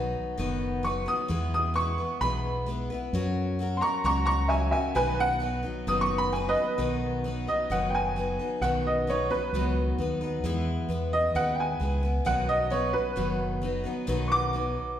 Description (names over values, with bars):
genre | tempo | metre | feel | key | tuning
honky-tonk and classic country | 131 BPM | 4/4 | straight | B major | A4 = 439 Hz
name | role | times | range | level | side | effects
picked steel-string acoustic guitar | accompaniment | 0.0-15.0 s | B2 to B4 | -31 LUFS | left 2 dB | none
fingered electric bass | bass | 0.0-14.8 s | F#1 to F#2 | -31 LUFS | equal | none
warm upright piano | melody | 0.8-15.0 s | B4 to D#6 | -27 LUFS | right 1 dB | none
room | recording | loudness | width
wet recital hall reverb, RT60 1.5 s | recorded in a church or concert hall | -25 LUFS | side -10 dB against mid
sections
0.0-6.8 A section; 6.8-15.0 A section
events
upright piano solo 0.0-6.8, 6.8-15.0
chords
0.0 B; 1.3 E; 3.1 F#; 5.0 B; 10.4 E; 12.3 B